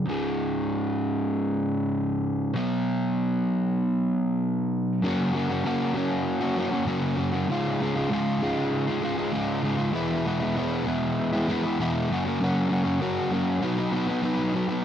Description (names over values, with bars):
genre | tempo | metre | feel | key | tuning
rock | 98 BPM | 4/4 | straight | unclear | A4 = 440 Hz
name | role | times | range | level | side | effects
crunchy overdriven guitar | solo | 0.0-14.8 s | Db2 to Cb5 | -24 LUFS | equal | none
room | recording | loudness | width
little or no reverb | dry, close 1970s-style studio recording | -24 LUFS | side -9 dB against mid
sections
0.0-5.0 A section; 5.0-14.8 B section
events
none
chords
0.1 Db5; 2.6 Cb5; 5.0 Gb; 7.5 Db; 10.0 E; 12.1 Gb; 13.6 Cb